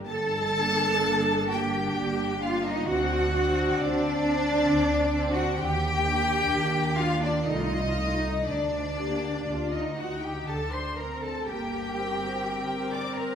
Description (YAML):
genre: classical, slow romantic movement for string orchestra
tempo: 58-68 BPM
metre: 3/4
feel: rubato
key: G minor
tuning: A4 = 440 Hz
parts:
  - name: rich studio violin section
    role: second line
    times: 0.0-13.3 s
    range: D5 to D6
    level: -32 LUFS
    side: left 2 dB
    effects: none
  - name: warm studio viola section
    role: accompaniment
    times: 0.0-13.3 s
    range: A3 to Bb4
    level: -32 LUFS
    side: equal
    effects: none
  - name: clear studio violin section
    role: melody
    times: 0.1-13.3 s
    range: D5 to D6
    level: -34 LUFS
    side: left 4 dB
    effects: none
  - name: warm studio cello section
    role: bass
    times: 0.1-13.3 s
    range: D4 to D5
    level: -28 LUFS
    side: right 1 dB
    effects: none
  - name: warm studio double bass section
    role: bass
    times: 0.1-13.3 s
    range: G1 to Eb2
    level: -32 LUFS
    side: right 2 dB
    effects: none
room: wet recital hall reverb, RT60 1.6 s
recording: recorded in a church or concert hall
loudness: -24 LUFS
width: side -8 dB against mid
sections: 0.1-13.3 A section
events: none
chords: 0.1 Gm; 2.9 D7; 5.6 Ebmaj7; 7.5 Adim/C; 8.5 Gm/D; 10.5 D5; 11.5 Gm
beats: | 0.08 1.04 1.96 | 2.87 3.79 4.68 | 5.58 6.50 7.46 | 8.47 9.49 10.48 | 11.49 12.46